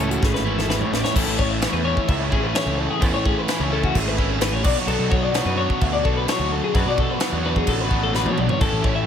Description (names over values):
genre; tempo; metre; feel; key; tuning
math rock and midwest emo; 129 BPM; 4/4; straight; A major; A4 = 440 Hz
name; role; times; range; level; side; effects
clean electric guitar; accompaniment; 0.0-1.2 s; E2 to E4; -28 LUFS; right 9 dB; none
twelve-string electric guitar; arpeggios; 0.0-9.1 s; F#4 to E5; -25 LUFS; left 7 dB; none
overdriven semi-hollow guitar; riff; 0.0-9.1 s; A2 to F#4; -24 LUFS; right 2 dB; none
fuzz picked electric bass; bass; 0.0-9.1 s; G#1 to B2; -25 LUFS; equal; overdrive
crisp fusion drum kit; drums; 0.1-9.0 s; crash cymbal, hi-hat, kick drum, snare drum, toms; -24 LUFS; equal; none
room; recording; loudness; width
little or no reverb; none; -18 LUFS; side -8 dB against mid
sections
0.0-1.2 A section; 1.2-9.1 B section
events
drum fill 0.2-1.2, 8.2-8.6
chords
0.0 Amaj7; 4.7 Bm7